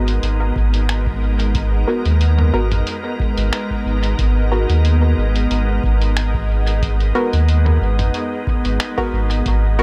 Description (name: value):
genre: ambient dub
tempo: 91 BPM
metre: 4/4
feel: swing 54% on 16ths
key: G# minor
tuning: A4 = 440 Hz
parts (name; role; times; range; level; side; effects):
- soft additive organ-like pad; sustained chords; 0.0-9.8 s; G#3 to A#4; -26 LUFS; equal; ensemble chorus, built-in reverb
- filtered dub chord stab; stabs; 0.0-9.8 s; B3 to A#4; -27 LUFS; equal; chorus, dub echo
- warm sub bass; bass; 0.0-9.8 s; G#1 to D#2; -18 LUFS; equal; none
- lo-fi sampler-style drum kit; drums; 0.1-9.6 s; finger snaps, hi-hat, toms; -30 LUFS; equal; dub echo
- electronic kick drum; drums; 0.6-9.6 s; none; -24 LUFS; equal; none
- wind-like tuned noise texture; texture; 9.5-9.8 s; none; barely audible; none; none
room: little or no reverb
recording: none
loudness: -18 LUFS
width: mono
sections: 0.0-9.8 A section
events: none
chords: 0.0 G#m9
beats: 0.23 0.89 | 1.55 2.21 2.87 3.53 | 4.19 4.85 5.51 6.17 | 6.82 7.48 8.14 8.80 | 9.46